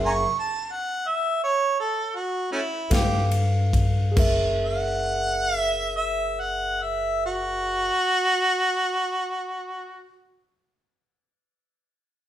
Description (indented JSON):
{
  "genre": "slow blues",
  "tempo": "45-61 BPM (dotted quarters)",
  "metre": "12/8",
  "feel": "straight",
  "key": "F# mixolydian",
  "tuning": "A4 = 440 Hz",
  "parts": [
    { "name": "mellow tine electric piano", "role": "accompaniment", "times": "0.0-7.9 s", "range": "G#4 to F5", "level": "-28 LUFS", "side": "right 1 dB", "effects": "none" },
    { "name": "upright bass", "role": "bass", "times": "0.0-7.9 s", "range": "F#1 to G2", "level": "-27 LUFS", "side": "left 1 dB", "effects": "none" },
    { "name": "mellow harmonica", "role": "second line", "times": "0.1-10.2 s", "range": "A3 to C#6", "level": "-23 LUFS", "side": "right 1 dB", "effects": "none" },
    { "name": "natural country drum kit", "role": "drums", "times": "2.9-4.4 s", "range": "crash cymbal, kick drum, ride cymbal, snare drum", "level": "-25 LUFS", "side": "equal", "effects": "none" }
  ],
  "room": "moderate large studio reverb, RT60 1.0 s",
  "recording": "band playing live in one room",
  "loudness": "-22 LUFS",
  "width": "side -11 dB against mid",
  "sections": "0.0-4.2 A section; 4.2-9.5 B section",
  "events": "slowing down 0.0-4.2; harmonica solo 0.0-4.2; stop 0.0-2.9",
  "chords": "0.0 F#9; 2.9 G9; 4.2 F#9",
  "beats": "0.73 1.78 2.91 | 4.17 5.49 6.82 8.15"
}